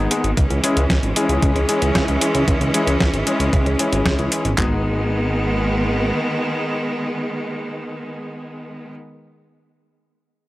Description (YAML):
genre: italo disco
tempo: 114 BPM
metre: 4/4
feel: straight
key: G# minor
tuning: A4 = 440 Hz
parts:
  - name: clear studio string section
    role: sustained chords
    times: 0.0-8.9 s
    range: D#3 to C#4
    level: -22 LUFS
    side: right 1 dB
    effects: none
  - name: warm electric grand piano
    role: stabs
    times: 0.0-8.9 s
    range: G#3 to G#4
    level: -24 LUFS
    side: left 2 dB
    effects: low-pass filter, analog delay
  - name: chorused synth bass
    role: bass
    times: 0.0-6.1 s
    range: G#1 to C#2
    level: -22 LUFS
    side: equal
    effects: tube saturation
  - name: clean 12-bit digital drum machine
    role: drums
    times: 0.1-4.6 s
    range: hi-hat, snare drum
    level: -23 LUFS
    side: equal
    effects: none
  - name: clean 12-bit digital drum machine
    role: drums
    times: 0.4-4.7 s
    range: handclaps, kick drum, toms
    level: -20 LUFS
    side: equal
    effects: none
room: digital ambience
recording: dry, gritty hardware recording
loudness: -17 LUFS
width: side -17 dB against mid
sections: 0.0-4.6 A section; 4.6-8.8 B section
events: filter sweep on electric grand piano 0.0-4.6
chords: 0.4 C#m; 4.6 G#m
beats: | 0.37 0.90 1.42 1.95 | 2.48 3.00 3.53 4.06 | 4.58 5.11 5.63 6.16 | 6.69 7.21 7.74 8.27